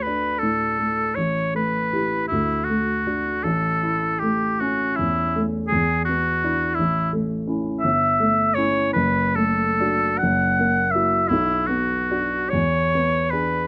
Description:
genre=classical, romantic duo for oboe and grand piano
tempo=46-58 BPM (dotted quarters)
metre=6/8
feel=rubato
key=D major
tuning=A4 = 440 Hz
part: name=clear oboe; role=melody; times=0.0-13.7 s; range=E4 to F#5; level=-24 LUFS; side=equal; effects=none
part: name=dark baby grand piano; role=accompaniment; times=0.0-13.7 s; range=F#1 to G#4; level=-26 LUFS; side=equal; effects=none
room=little or no reverb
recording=close, detailed microphones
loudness=-22 LUFS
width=mono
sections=0.0-13.7 A section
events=none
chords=0.0 D; 1.2 A5; 2.3 D; 3.4 A; 5.7 E5; 6.8 A; 7.8 A7/G; 8.9 D/F#; 10.2 F#7; 11.3 Bm; 12.5 E7

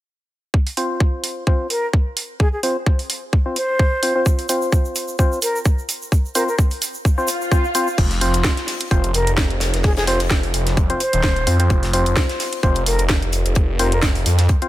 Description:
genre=bass house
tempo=129 BPM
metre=4/4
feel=swing 55% on 16ths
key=unclear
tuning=A4 = 441 Hz
part: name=electronic kick drum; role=drums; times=0.5-14.6 s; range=none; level=-17 LUFS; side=equal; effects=overdrive
part: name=garage drum kit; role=drums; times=0.7-14.7 s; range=crash cymbal, hi-hat, snare drum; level=-24 LUFS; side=right 2 dB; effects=overdrive
part: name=percussive organ stab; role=stabs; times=0.8-14.7 s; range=C4 to C5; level=-24 LUFS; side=left 1 dB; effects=chorus, sidechain pumping, dub echo
part: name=breathy concert flute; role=melody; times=1.7-14.0 s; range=Ab4 to C5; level=-25 LUFS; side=equal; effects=dub echo
part: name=egg shaker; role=percussion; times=4.3-8.0 s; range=none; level=-29 LUFS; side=right 5 dB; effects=none
part: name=swell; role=sound effects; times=7.2-8.0 s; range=none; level=-26 LUFS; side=left 1 dB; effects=none
part: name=phased detuned saw bass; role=bass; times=8.0-14.5 s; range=Eb1 to F2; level=-19 LUFS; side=equal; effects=phaser, overdrive, sidechain pumping
part: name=gated 80s drum kit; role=drums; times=8.0-14.6 s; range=hi-hat, snare drum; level=-30 LUFS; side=left 2 dB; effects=sidechain pumping on hats, high-pass filter on hats, high-pass filter on snare, high-pass filter on room
room=little or no reverb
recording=none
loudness=-16 LUFS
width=side -15 dB against mid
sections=0.5-8.0 A section; 8.0-14.7 B section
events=filter sweep on synth stab 0.5-8.0; swell 7.2-8.0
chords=0.5 F5

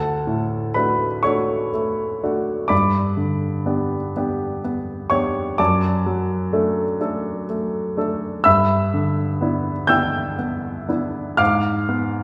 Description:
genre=classical, romantic nocturne for solo piano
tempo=42 BPM (dotted quarters)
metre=6/8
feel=rubato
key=D major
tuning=A4 = 442 Hz
part: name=clear grand piano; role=solo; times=0.0-12.2 s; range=D2 to G6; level=-21 LUFS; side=equal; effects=none
room=wet recital hall reverb, RT60 1.5 s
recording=heard from further back in the room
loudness=-21 LUFS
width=mono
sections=0.0-12.2 A section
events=none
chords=0.0 D; 2.7 G; 5.6 D/F#; 8.5 Em7/G; 11.4 G#dim7

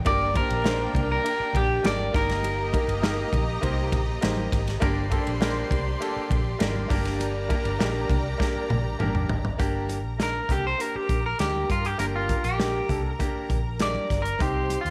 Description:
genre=uptempo 1960s-style soul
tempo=100 BPM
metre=4/4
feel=straight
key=G minor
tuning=A4 = 439 Hz
part: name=clear symphonic string section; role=second line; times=0.0-14.9 s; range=D4 to C6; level=-37 LUFS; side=equal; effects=none
part: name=mellow horn section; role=second line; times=0.0-9.3 s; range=G3 to Eb5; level=-40 LUFS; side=equal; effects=none
part: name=congas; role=percussion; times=0.0-14.8 s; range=none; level=-40 LUFS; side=equal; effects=none
part: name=electric guitar at the edge of break-up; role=melody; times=0.1-3.9, 10.2-14.9 s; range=F4 to D5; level=-29 LUFS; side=equal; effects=none
part: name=bright baby grand piano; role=accompaniment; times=0.1-14.8 s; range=Bb3 to C5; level=-34 LUFS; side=equal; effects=none
part: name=vintage muted fingered electric bass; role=bass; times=0.1-14.9 s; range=G1 to G2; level=-32 LUFS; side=equal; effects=none
part: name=natural country drum kit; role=drums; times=0.1-14.9 s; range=hi-hat, kick drum, ride cymbal, snare drum, toms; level=-30 LUFS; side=equal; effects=none
room=light reverb, small room ambience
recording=none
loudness=-25 LUFS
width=mono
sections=0.0-9.6 A section; 9.6-14.9 B section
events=drum fill 8.4-9.6; clean electric guitar solo 9.6-14.9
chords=0.1 Gm; 2.1 Eb/G; 4.8 Gm

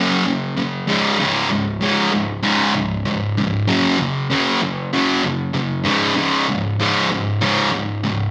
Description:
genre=rock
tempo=96 BPM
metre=4/4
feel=straight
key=unclear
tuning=A4 = 437 Hz
part: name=fuzz guitar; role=solo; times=0.0-8.3 s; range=Db2 to Gb3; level=-19 LUFS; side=equal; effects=distortion
room=moderate large studio reverb, RT60 1.2 s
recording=band playing live in one room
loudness=-19 LUFS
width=mono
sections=0.0-8.3 A section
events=none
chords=0.0 Gb5; 0.9 Db5; 3.7 Gb5; 5.9 Db5

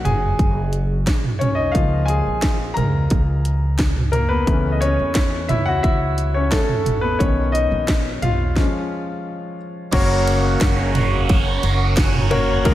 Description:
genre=piano-driven pop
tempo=88 BPM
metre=4/4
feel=straight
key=F# major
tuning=A4 = 440 Hz
part: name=clear baby grand piano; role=accompaniment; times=0.0-12.7 s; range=G#2 to A#5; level=-22 LUFS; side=left 2 dB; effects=slapback echo
part: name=upright bass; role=bass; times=0.0-12.7 s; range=F#1 to E2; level=-21 LUFS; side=equal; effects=none
part: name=house drum kit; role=drums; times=0.1-12.7 s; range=crash cymbal, handclaps, hi-hat, kick drum, ride cymbal, snare drum, toms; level=-20 LUFS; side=right 1 dB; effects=none
part: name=mellow tonewheel organ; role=sustained chords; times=9.9-12.7 s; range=A#4 to C#6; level=-28 LUFS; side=right 2 dB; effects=chorus vibrato, stopped rotary speaker
part: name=cranked stack guitar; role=riff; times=9.9-12.7 s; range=F#2 to G#4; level=-24 LUFS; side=right 5 dB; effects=overdrive, phaser
room=light reverb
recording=none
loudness=-16 LUFS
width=side -14 dB against mid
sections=0.0-9.9 A section; 9.9-12.7 B section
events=grand piano solo 0.0-9.9; stop 8.6-9.9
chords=0.0 F#; 1.7 C#6; 4.5 A/C#; 7.2 Badd9; 8.6 C#; 9.9 F#

